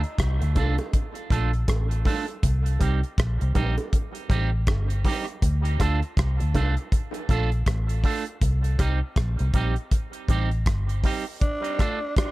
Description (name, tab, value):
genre	dub reggae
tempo	80 BPM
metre	4/4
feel	swing 60% on 16ths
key	D phrygian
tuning	A4 = 440 Hz
part	vintage muted fingered electric bass	bass	0.0-11.0 s	G1 to D2	-23 LUFS	equal	none
part	damped 70s drum kit	drums	0.0-12.3 s	hi-hat, kick drum, rim click	-24 LUFS	equal	none
part	electric guitar with an envelope filter	accompaniment	0.4-12.0 s	G3 to A4	-31 LUFS	right 5 dB	lush chorus, tape echo
part	bongos	percussion	0.6-6.8 s	none	-36 LUFS	right 4 dB	tape echo
part	growling tenor saxophone	melody	11.4-12.3 s	D4	-32 LUFS	equal	tape echo
room	small room ambience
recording	echo-heavy mix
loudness	-22 LUFS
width	side -19 dB against mid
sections	0.0-12.3 A section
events	break 0.0-11.4; part muted 5.4-11.4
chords	0.0 Dm; 2.4 Cm; 5.4 Dm; 8.4 Cm; 11.4 Dm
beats	0.18 0.93 1.68 | 2.43 3.18 3.93 4.67 | 5.42 6.17 6.92 7.67 | 8.42 9.16 9.91 10.66 | 11.41 12.16